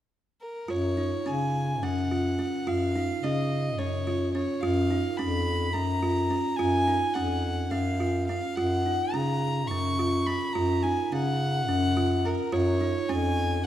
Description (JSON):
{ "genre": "contemporary instrumental, chamber music in an uneven meter", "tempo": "213 BPM (eighths)", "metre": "7/8", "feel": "straight", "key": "F# major", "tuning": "A4 = 440 Hz", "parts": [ { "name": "clear violin", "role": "melody", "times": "0.4-13.7 s", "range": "A#4 to C#6", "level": "-30 LUFS", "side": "left 1 dB", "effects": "none" }, { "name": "buzzing kalimba", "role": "arpeggios", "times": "0.7-13.5 s", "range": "C#4 to E#4", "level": "-29 LUFS", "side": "right 2 dB", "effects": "none" }, { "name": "mellow bass clarinet", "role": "bass", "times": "0.7-13.7 s", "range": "E#2 to C#3", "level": "-28 LUFS", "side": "left 1 dB", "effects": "none" } ], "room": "moderate concert hall reverb, RT60 2.4 s", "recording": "dark, warm production", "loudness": "-24 LUFS", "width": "side -11 dB against mid", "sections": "0.7-13.7 A section", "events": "none", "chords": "0.0 N.C.; 0.7 F#5; 4.6 A#m; 8.6 F#maj7; 12.5 F#maj7sus2" }